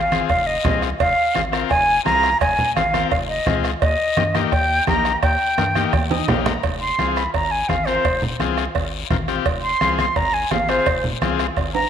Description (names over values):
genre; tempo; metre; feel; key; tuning
latin, cumbia; 170 BPM; 4/4; straight; F minor; A4 = 440 Hz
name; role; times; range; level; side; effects
jazz flute; melody; 0.0-11.9 s; C5 to C6; -20 LUFS; equal; none
rubbery square bass; bass; 0.0-11.9 s; F1 to G2; -27 LUFS; equal; none
overdriven combo organ; accompaniment; 0.1-11.5 s; Bb3 to Bb5; -25 LUFS; left 11 dB; none
bombo; percussion; 0.1-11.7 s; none; -25 LUFS; right 2 dB; none
congas; percussion; 0.1-11.4 s; none; -26 LUFS; equal; none
guiro; percussion; 0.1-11.9 s; none; -33 LUFS; left 11 dB; none
cowbell and timbales; percussion; 0.3-11.8 s; none; -28 LUFS; right 10 dB; none
room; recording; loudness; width
moderate echo chamber reverb, RT60 2.2 s; 1960s-style stereo with parts hard left and right; -17 LUFS; side -8 dB against mid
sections
0.0-6.6 A section; 6.6-11.9 B section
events
drum fill 5.9-6.6; transistor combo organ fill 5.9-6.6; flute solo 6.6-11.9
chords
0.0 Fm; 3.8 Eb; 6.6 Fm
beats
0.30 0.65 | 1.00 1.36 1.71 2.06 | 2.41 2.77 3.12 3.47 | 3.82 4.17 4.53 4.88 | 5.23 5.58 5.93 6.29 | 6.64 6.99 7.34 7.70 | 8.05 8.40 8.75 9.11 | 9.46 9.81 10.16 10.51 | 10.87 11.22 11.57